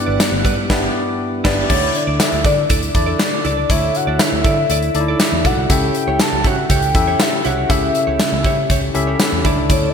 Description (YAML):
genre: 1980s-style pop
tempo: 120 BPM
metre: 4/4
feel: straight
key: D major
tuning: A4 = 440 Hz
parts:
  - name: soft octave-layered synth lead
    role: melody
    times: 0.0-9.9 s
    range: C#5 to A5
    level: -21 LUFS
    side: left 1 dB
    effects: chorus, phaser
  - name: bell-like tine electric piano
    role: accompaniment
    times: 0.0-9.9 s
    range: G2 to E5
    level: -21 LUFS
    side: left 3 dB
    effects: wide subtle chorus
  - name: lush unison pad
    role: sustained chords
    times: 0.0-1.7, 9.7-9.9 s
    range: D3 to F#5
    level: -31 LUFS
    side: right 2 dB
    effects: chorus
  - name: direct-recorded clean electric guitar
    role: riff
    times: 0.1-9.9 s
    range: E4 to D5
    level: -26 LUFS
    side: right 7 dB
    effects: wide subtle chorus, ping-pong delay
  - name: vintage muted fingered electric bass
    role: bass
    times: 0.1-9.9 s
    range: G1 to D3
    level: -22 LUFS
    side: right 1 dB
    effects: none
  - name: gated 80s drum kit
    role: drums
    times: 0.2-9.8 s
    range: crash cymbal, hi-hat, kick drum, snare drum, tambourine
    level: -17 LUFS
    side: equal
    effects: gated reverb
room: moderate lush hall reverb, RT60 2.4 s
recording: bright 1980s-style digital production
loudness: -14 LUFS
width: side -7 dB against mid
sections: 0.0-1.7 A section; 1.7-9.9 A section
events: band accent 0.7-1.7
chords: 0.0 G6; 1.7 Dsus2; 5.7 A7